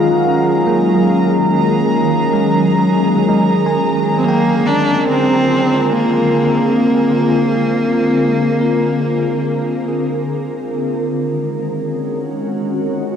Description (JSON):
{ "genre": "ambient", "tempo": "free time", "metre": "none", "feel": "none", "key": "unclear", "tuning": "A4 = 438 Hz", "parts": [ { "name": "glassy FM pad", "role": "sustained chords", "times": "0.0-13.2 s", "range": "D3 to Bb4", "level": "-16 LUFS", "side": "equal", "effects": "ensemble chorus, built-in reverb" }, { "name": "bell-like tine electric piano", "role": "arpeggios", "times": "0.0-12.6 s", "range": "Gb3 to Ab5", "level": "-21 LUFS", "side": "left 1 dB", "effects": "phaser, ping-pong delay" }, { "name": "organ-like drone", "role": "drone", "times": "0.0-13.2 s", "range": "Ab3 to Bb4", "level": "-24 LUFS", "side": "right 2 dB", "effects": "ensemble chorus, built-in reverb" }, { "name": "warm chamber violin section", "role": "texture", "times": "0.0-11.0 s", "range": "Bb5", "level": "-24 LUFS", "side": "right 1 dB", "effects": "none" }, { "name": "rich cello", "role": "melody", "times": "4.2-10.1 s", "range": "Bb3 to D4", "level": "-18 LUFS", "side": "equal", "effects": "ping-pong delay" } ], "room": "wet huge ambient reverb, RT60 8.4 s", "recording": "worn, warbling old tape, cassette tape, warbly pitch drift", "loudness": "-13 LUFS", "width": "side -8 dB against mid", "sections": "0.0-11.0 A section; 11.0-13.2 B section", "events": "fade-out on tine electric piano 0.0-11.0; fade-out on violin section 0.0-11.0", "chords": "0.0 Gbadd9; 4.2 Bb7; 11.0 Gbadd9" }